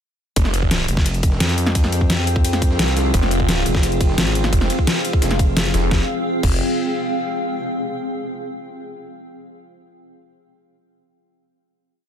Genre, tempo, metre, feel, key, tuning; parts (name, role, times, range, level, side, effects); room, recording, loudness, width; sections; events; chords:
dark technical drum and bass; 173 BPM; 4/4; straight; F minor; A4 = 440 Hz
deep dark ambient pad; sustained chords; 1.1-6.1 s; F4 to G5; -28 LUFS; equal; chorus, built-in reverb, sidechain pumping
phased detuned saw bass; bass; 0.4-0.9, 3.1-6.6 s; F1; -20 LUFS; equal; phaser, tube saturation
breakbeat sampler-style drum kit; drums; 0.4-5.8 s; ride cymbal, snare drum; -31 LUFS; right 1 dB; high-pass filter on cymbals, studio reverb, high-pass filter on snare, high-pass filter on room
dubstep drum kit; drums; 0.4-6.5 s; crash cymbal, hi-hat, snare drum; -22 LUFS; equal; overdrive, studio reverb
electronic kick drum; drums; 0.4-6.5 s; -18 LUFS; equal; studio reverb
granular cloud pad; texture; 1.5-7.3 s; C4 to G5; -25 LUFS; left 1 dB; built-in reverb, sidechain pumping
growling FM bass; bass; 0.9-5.7 s; F1 to F2; -20 LUFS; equal
light reverb, digital ambience; dense, heavily limited modern master; -16 LUFS; side -9 dB against mid
0.4-5.9 drop; 5.9-7.3 final chord
drop 0.4-5.9
0.4 Fmadd9